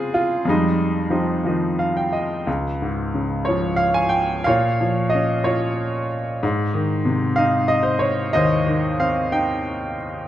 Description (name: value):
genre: classical, lyrical solo piano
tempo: 61 BPM (dotted quarters)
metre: 6/8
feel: rubato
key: Ab major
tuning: A4 = 440 Hz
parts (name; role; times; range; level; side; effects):
- bright baby grand piano; solo; 0.0-10.3 s; Db2 to Ab5; -18 LUFS; equal; none
room: moderate recital hall reverb, RT60 1.4 s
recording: dark, warm production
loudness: -18 LUFS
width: side -12 dB against mid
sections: 0.0-2.5 A section; 2.5-10.3 B section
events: grand piano fill 1.5-2.5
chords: 0.5 Fm9; 2.5 Db; 4.5 Bbm; 6.4 Ab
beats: | 0.45 1.45 | 2.47 3.48 | 4.47 5.46 | 6.42 7.39 | 8.36 9.35